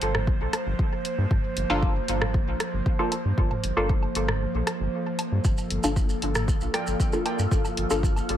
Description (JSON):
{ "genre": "dub techno", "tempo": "116 BPM", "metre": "4/4", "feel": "straight", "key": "G minor", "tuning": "A4 = 440 Hz", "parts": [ { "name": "airy breathy pad", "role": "sustained chords", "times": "0.0-8.4 s", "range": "F3 to C5", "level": "-31 LUFS", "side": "right 1 dB", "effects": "chorus, sidechain pumping" }, { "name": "round analog bass", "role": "bass", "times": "0.0-8.4 s", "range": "G1 to G2", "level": "-28 LUFS", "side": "equal", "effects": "sidechain pumping" }, { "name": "punchy analog drum machine", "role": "drums", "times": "0.0-8.4 s", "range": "hi-hat, rim click", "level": "-31 LUFS", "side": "equal", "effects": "dub echo" }, { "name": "electronic toms and woodblock", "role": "percussion", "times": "0.1-8.3 s", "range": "none", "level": "-36 LUFS", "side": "equal", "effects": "sidechain pumping on toms, sidechain pumping on perc, dub echo" }, { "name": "electronic kick drum", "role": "drums", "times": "0.3-8.1 s", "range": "none", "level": "-24 LUFS", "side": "equal", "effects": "overdrive" }, { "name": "filtered dub chord stab", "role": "stabs", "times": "1.7-8.1 s", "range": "Bb3 to A4", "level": "-29 LUFS", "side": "left 1 dB", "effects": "chorus, phaser, cassette tape, sidechain pumping, dub echo" }, { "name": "maracas", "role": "percussion", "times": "5.4-8.3 s", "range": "none", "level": "-37 LUFS", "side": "right 3 dB", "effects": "none" }, { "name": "wind-like tuned noise texture", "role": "texture", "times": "5.8-8.4 s", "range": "F4", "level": "-38 LUFS", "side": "right 1 dB", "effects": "built-in reverb, sidechain pumping" }, { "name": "warbly lo-fi synth keys", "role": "riff", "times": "6.7-7.4 s", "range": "F4 to G5", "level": "-34 LUFS", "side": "right 2 dB", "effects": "chorus, sidechain pumping, dub echo" } ], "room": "digital ambience", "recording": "none", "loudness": "-23 LUFS", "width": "side -11 dB against mid", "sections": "0.0-8.4 A section", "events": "break 4.4-5.4", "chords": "0.0 Gm7" }